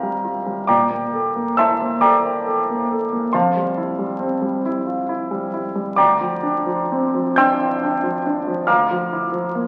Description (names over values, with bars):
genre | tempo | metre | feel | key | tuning
classical, impressionist solo piano | 45 BPM (dotted quarters) | 6/8 | uneven beats, rubato | unclear | A4 = 444 Hz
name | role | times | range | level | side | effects
clear grand piano | solo | 0.0-9.7 s | D2 to G6 | -20 LUFS | equal | none
room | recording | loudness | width
wet recital hall reverb, RT60 1.8 s | very old 78 rpm record, vinyl crackle | -20 LUFS | mono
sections
0.0-9.7 A section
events
none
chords
0.0 Gm7; 0.7 Bbmaj7#11; 3.3 Fmaj9; 6.0 Dm7; 8.7 Bb/D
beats
| 0.68 2.03 | 3.34 4.65 | 5.97 7.38 | 8.69